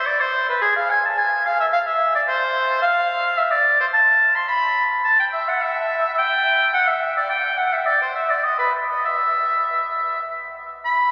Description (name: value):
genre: classical, baroque-style fantasia for unaccompanied oboe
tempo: 96-110 BPM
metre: 3/4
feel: rubato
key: E minor from 3.9 s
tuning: A4 = 440 Hz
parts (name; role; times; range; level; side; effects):
- clear oboe; solo; 0.0-11.1 s; G#4 to C6; -19 LUFS; equal; none
room: wet cathedral reverb, RT60 5.8 s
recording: recorded on a phone in the room, club reverb, compression, faint mains hum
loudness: -19 LUFS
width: mono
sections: 0.0-10.9 A section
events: none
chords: none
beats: 0.07 | 0.63 1.18 1.73 | 2.28 2.83 3.38 | 3.93 4.48 5.04 | 5.62 6.18 6.74 | 7.30 7.87 8.44 | 9.04 9.65 10.25 | 10.86